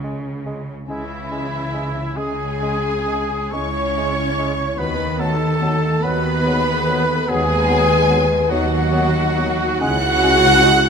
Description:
classical, slow romantic movement for symphony orchestra; 43-50 BPM (dotted quarters); 12/8; rubato; A4 = 442 Hz
mellow clarinet; second line; 0.0-10.8 s; B3 to C#4; -30 LUFS; left 3 dB
warm bassoon; accompaniment; 0.0-10.8 s; F#3 to G#3; -31 LUFS; right 1 dB
rich studio double bass section; bass; 0.0-10.9 s; C#2 to D#2; -25 LUFS; right 2 dB
warm studio cello section; bass; 0.0-10.9 s; C#3 to D#3; -25 LUFS; equal
warm studio violin section; melody; 0.9-10.9 s; E5 to F#6; -26 LUFS; left 2 dB
bright large flute ensemble; second line; 0.9-10.9 s; E4 to F#5; -27 LUFS; equal
rich studio violin section; second line; 0.9-10.9 s; E4 to F#5; -28 LUFS; left 1 dB
warm oboe; second line; 0.9-10.9 s; E4 to F#5; -26 LUFS; right 2 dB
rich studio viola section; accompaniment; 0.9-10.9 s; E3 to F#4; -24 LUFS; right 1 dB
clear trumpet; stabs; 0.9-10.9 s; E4 to F#5; -24 LUFS; right 3 dB
mellow French horn section; sustained chords; 2.2-10.9 s; D#4 to B4; -24 LUFS; left 5 dB
moderate recital hall reverb, RT60 1.6 s; -16 LUFS; side -6 dB against mid
0.0-10.9 A section
0.0 C#m; 4.8 B/D#; 9.8 C#m

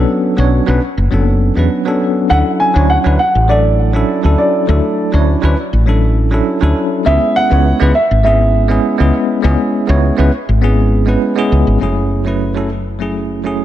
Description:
sunset chillout; 101 BPM; 4/4; straight; F# minor; A4 = 440 Hz
bell-like tine electric piano; accompaniment; 0.0-13.6 s; F#3 to C#5; -15 LUFS; moving between left 3 dB and right 4 dB; fast stereo tremolo, auto-pan, ping-pong delay
woody fretless electric bass; bass; 0.0-13.6 s; F#1 to E2; -13 LUFS; equal; analog chorus
dark concert grand piano; melody; 2.3-11.2 s; D5 to G#5; -16 LUFS; right 1 dB; tape echo
light reverb, small room ambience; -11 LUFS; side -12 dB against mid
0.0-11.8 A section; 11.8-13.6 B section
filter sweep on tine electric piano 0.0-11.8
0.0 Bm7; 2.3 Dmaj7; 7.1 C#m7; 11.8 F#m9

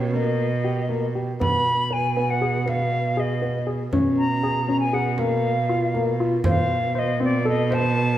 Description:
contemporary instrumental, chamber music in an uneven meter; 119 BPM; 5/4; straight; A4 = 436 Hz
silver concert flute; melody; 0.0-8.2 s; C#5 to B5; -25 LUFS; left 1 dB
warm grand piano; arpeggios; 0.0-8.0 s; A#3 to C5; -25 LUFS; left 2 dB
dark cello; bass; 0.0-8.2 s; B2; -24 LUFS; right 3 dB
frame drum; percussion; 1.4-8.0 s; -26 LUFS; right 1 dB
wet recital hall reverb, RT60 1.5 s; -20 LUFS; side -12 dB against mid
0.0-8.2 A section
0.0 D#/B; 1.4 G#m/B; 3.9 A#m/B; 6.5 F/B

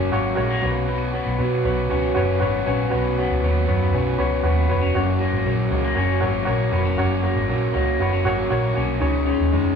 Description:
indie pop; 118 BPM; 4/4; straight; F# major; A4 = 442 Hz
raw garage guitar; accompaniment; 0.0-9.8 s; F#2 to D#4; -29 LUFS; right 2 dB; overdrive, spring reverb
reed electric piano; accompaniment; 0.0-9.8 s; D#4 to A#5; -25 LUFS; right 3 dB
electric guitar through a small old amp; arpeggios; 0.0-9.8 s; F#2 to C#4; -24 LUFS; left 7 dB
vintage muted picked electric bass; bass; 0.0-9.7 s; E#1 to B2; -22 LUFS; right 1 dB
wet large studio reverb, RT60 1.3 s; band playing live in one room, small room ambience; -19 LUFS; side -6 dB against mid
0.0-9.8 A section
reed electric piano fill 0.0-0.9, 7.5-9.0
0.0 F#; 0.6 Bsus2; 9.0 C#sus2

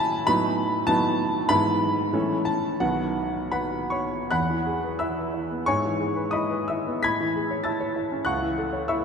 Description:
classical, romantic character piece for solo piano; 71-102 BPM; 2/4; rubato; E major; A4 = 439 Hz
clear concert grand piano; solo; 0.0-9.0 s; B1 to B6; -23 LUFS; equal
wet cathedral reverb, RT60 5.9 s; in a vast, echoing space; -23 LUFS; side -6 dB against mid
0.0-4.3 A section; 4.3-9.0 B section
0.3 B7/A; 1.5 E/G#; 2.1 A; 2.8 B; 4.3 E; 5.7 E/G#; 7.0 Amaj7; 8.3 A/C#

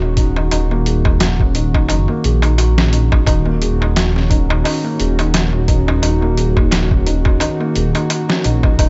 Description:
trip hop; 87 BPM; 4/4; swing 56% on 16ths; Eb minor; A4 = 437 Hz
warbly tape-like pad; sustained chords; 0.0-8.9 s; Eb3 to Gb4; -25 LUFS; equal; chorus, built-in reverb, phaser
felt-muted upright piano; arpeggios; 0.0-8.9 s; Bb3 to Ab4; -24 LUFS; equal; digital delay
dark detuned saw bass; bass; 0.0-8.9 s; Eb1 to Bb1; -18 LUFS; equal
darbuka; percussion; 0.0-8.9 s; -28 LUFS; equal
trip hop sampler-style drum kit; drums; 0.2-8.9 s; hi-hat, kick drum, snare drum; -19 LUFS; equal
digital ambience; nothing above 7.9 kHz; -15 LUFS; mono
0.0-8.9 A section
0.0 Ebm7

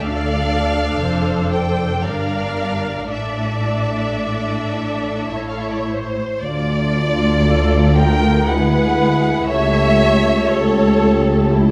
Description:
classical, slow romantic movement for symphony orchestra; 54-61 BPM; 3/4; rubato; D minor; A4 = 440 Hz
warm symphonic violin section; melody; 0.0-11.7 s; F4 to G5; -30 LUFS; equal
warm studio violin section; second line; 0.0-11.5 s; A4 to G5; -25 LUFS; equal
warm symphonic viola section; accompaniment; 0.0-11.7 s; D4 to D5; -25 LUFS; equal
warm studio cello section; bass; 0.0-11.7 s; C#2 to A2; -23 LUFS; equal
warm symphonic double bass section; bass; 0.0-11.7 s; F1 to D2; -26 LUFS; equal
mellow French horn section; sustained chords; 6.4-11.7 s; G#3 to G4; -23 LUFS; equal
mellow tuba; bass; 6.4-11.7 s; C#2 to D2; -25 LUFS; equal
wet scoring stage reverb, RT60 1.7 s; -17 LUFS; mono
0.0-6.4 A section; 6.4-11.7 B section
0.0 Dm; 2.0 Gm; 3.1 Asus4; 5.3 A; 6.4 Dm; 8.5 E7/D; 9.5 A7/C#

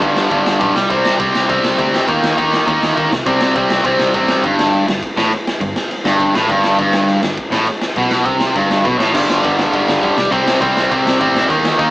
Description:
punk rock; 204 BPM; 4/4; straight; G major from 4.4 s; A4 = 441 Hz
distorted electric guitar; riff; 0.0-11.9 s; G2 to Eb4; -13 LUFS; equal; overdrive
picked electric bass; bass; 0.0-11.9 s; G1 to Eb3; -28 LUFS; equal
raw garage drum kit; drums; 0.0-11.9 s; crash cymbal, kick drum, ride cymbal, snare drum; -19 LUFS; equal
light reverb; band playing live in one room, small speaker sound; -12 LUFS; side -19 dB against mid
0.0-4.4 A section; 4.4-9.1 B section; 9.1-11.9 C section
0.0 G; 0.8 C5; 2.1 Eb5; 3.1 C5; 4.4 G; 9.1 G5; 10.2 C5

